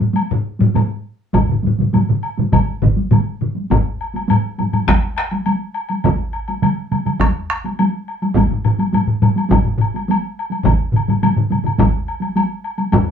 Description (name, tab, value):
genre	japanese traditional, taiko drum ensemble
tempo	103 BPM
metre	4/4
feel	straight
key	none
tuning	none
part	taiko ensemble	percussion	0.0-13.1 s	none	-18 LUFS	left 2 dB	none
part	taiko ensemble	percussion	0.1-13.1 s	none	-19 LUFS	equal	none
part	woodblock	percussion	0.2-13.1 s	none	-24 LUFS	left 2 dB	none
part	solo taiko drums	percussion	1.3-11.9 s	none	-20 LUFS	right 4 dB	none
part	taiko ensemble	percussion	1.3-13.1 s	none	-19 LUFS	right 1 dB	none
room	wet studio ambience, RT60 0.5 s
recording	band playing live in one room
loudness	-15 LUFS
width	side -8 dB against mid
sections	0.0-3.7 A section; 3.7-13.1 B section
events	speeding up 0.0-13.1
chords	none